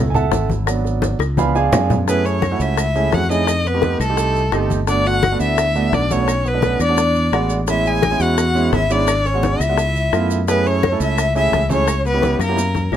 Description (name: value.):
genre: Afro-Cuban jazz.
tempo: 171 BPM.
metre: 4/4.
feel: straight.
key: F# minor.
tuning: A4 = 438 Hz.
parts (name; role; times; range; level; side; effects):
clear baby grand piano; accompaniment; 0.0-13.0 s; E#3 to B5; -22 LUFS; right 5 dB; none.
modern bright fingered electric bass; bass; 0.0-13.0 s; G1 to F#2; -20 LUFS; equal; none.
congas; percussion; 0.1-12.8 s; none; -23 LUFS; left 1 dB; none.
maracas; percussion; 0.2-13.0 s; none; -35 LUFS; right 6 dB; none.
bongos; percussion; 0.3-13.0 s; none; -23 LUFS; left 9 dB; none.
claves; percussion; 0.7-13.0 s; none; -31 LUFS; left 12 dB; none.
rich violin; melody; 2.1-12.9 s; A4 to G#5; -20 LUFS; equal; none.
breathy tenor saxophone; second line; 2.1-12.9 s; A3 to G#4; -25 LUFS; left 5 dB; none.
room: light reverb.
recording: none.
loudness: -15 LUFS.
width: side -10 dB against mid.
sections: 0.0-2.1 A section; 2.1-13.0 B section.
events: grand piano solo 0.0-2.1; drum fill 1.0-2.1, 12.4-13.0.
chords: 0.0 F#m9; 0.7 G#m7b5; 1.4 C#7b9; 2.1 F#m9; 3.5 F9; 4.9 Gmaj9; 6.3 Bm7; 7.0 E9; 7.7 Amaj9; 9.1 G#m7b5; 9.8 C#7alt; 10.5 F#m9; 11.9 C#m7b5.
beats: 0.32 | 0.67 1.02 1.37 1.72 | 2.07 2.42 2.77 3.12 | 3.48 3.83 4.18 4.53 | 4.88 5.23 5.58 5.93 | 6.28 6.63 6.98 7.33 | 7.68 8.03 8.38 8.73 | 9.08 9.43 9.78 10.13 | 10.48 10.83 11.18 11.53 | 11.88 12.23 12.58 12.93.